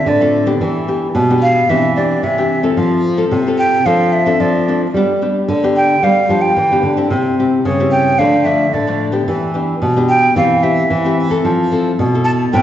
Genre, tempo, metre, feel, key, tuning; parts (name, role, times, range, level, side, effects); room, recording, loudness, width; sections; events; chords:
samba and choro; 111 BPM; 4/4; straight; C major; A4 = 440 Hz
mellow hollow jazz flute; melody; 0.0-12.6 s; D5 to A5; -15 LUFS; right 2 dB
nylon-string guitar; accompaniment; 0.0-12.6 s; G2 to B4; -17 LUFS; left 3 dB
nylon-string guitar; bass; 0.1-12.6 s; A2 to G3; -16 LUFS; equal
wet scoring stage reverb, RT60 1.8 s; recorded in a church or concert hall, nothing above 7.8 kHz; -12 LUFS; side -11 dB against mid
0.0-12.6 A section
0.0 Dm7; 0.6 Em7; 1.7 Cadd9/E; 2.8 F; 3.9 Dm7/F; 4.9 G; 7.1 C; 8.2 Dm; 9.3 Em7; 10.4 C/E; 11.4 Fmaj7